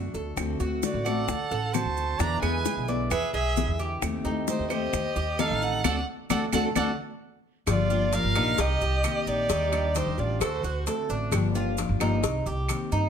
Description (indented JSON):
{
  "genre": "latin, Cuban son and guajira",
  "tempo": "132 BPM",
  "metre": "4/4",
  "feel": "straight",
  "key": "unclear",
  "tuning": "A4 = 439 Hz",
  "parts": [
    { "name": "picked steel-string acoustic guitar", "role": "accompaniment", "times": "0.0-13.1 s", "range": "B2 to G4", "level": "-31 LUFS", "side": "left 6 dB", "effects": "none" },
    { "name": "Cuban tres", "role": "arpeggios", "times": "0.0-13.1 s", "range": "D4 to D5", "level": "-32 LUFS", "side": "right 3 dB", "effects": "none" },
    { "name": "upright bass", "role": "bass", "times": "0.0-13.1 s", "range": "G1 to G2", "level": "-29 LUFS", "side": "right 1 dB", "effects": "none" },
    { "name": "bongos and cowbell", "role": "percussion", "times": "0.1-12.9 s", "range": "none", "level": "-33 LUFS", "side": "left 9 dB", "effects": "none" },
    { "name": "maracas", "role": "percussion", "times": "0.1-13.1 s", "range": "none", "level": "-40 LUFS", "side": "right 12 dB", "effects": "none" },
    { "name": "claves", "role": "percussion", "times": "0.4-12.9 s", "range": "none", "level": "-37 LUFS", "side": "right 8 dB", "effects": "none" },
    { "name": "warm violin", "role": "melody", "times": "0.8-10.8 s", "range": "C5 to Bb5", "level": "-30 LUFS", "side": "right 1 dB", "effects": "none" },
    { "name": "clear trumpet", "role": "second line", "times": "0.8-10.8 s", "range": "Eb4 to D5", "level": "-34 LUFS", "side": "right 9 dB", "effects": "none" }
  ],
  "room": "light reverb",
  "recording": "none",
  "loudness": "-24 LUFS",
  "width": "side -8 dB against mid",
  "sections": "0.0-7.7 A section; 7.7-13.1 B section",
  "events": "band accent 5.8-7.7",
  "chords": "0.4 D7; 2.2 E7; 4.0 Am7b5/Eb; 5.8 D7; 7.7 Gm7; 8.6 Cm7; 9.5 Ebmaj7; 10.4 D7; 11.3 Gm7; 12.2 Cm7"
}